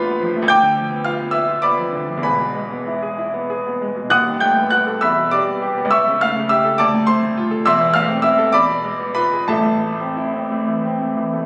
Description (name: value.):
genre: classical, romantic character piece for solo piano.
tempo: 59-73 BPM (dotted quarters).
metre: 6/8.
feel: rubato.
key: A minor.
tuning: A4 = 440 Hz.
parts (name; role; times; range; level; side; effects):
clear grand piano; solo; 0.0-11.5 s; D#1 to G6; -18 LUFS; equal; none.
room: wet recital hall reverb, RT60 1.5 s.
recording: recorded on a phone in the room, club reverb, compression.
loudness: -18 LUFS.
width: mono.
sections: 0.0-11.5 A section.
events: none.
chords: 0.0 Bm7b5/A; 0.5 Bdim/D; 2.2 E; 4.1 B7/D#; 5.0 Em; 5.9 A7/C#; 6.8 Dm; 7.6 Am/E; 8.5 E7b9; 9.5 Am.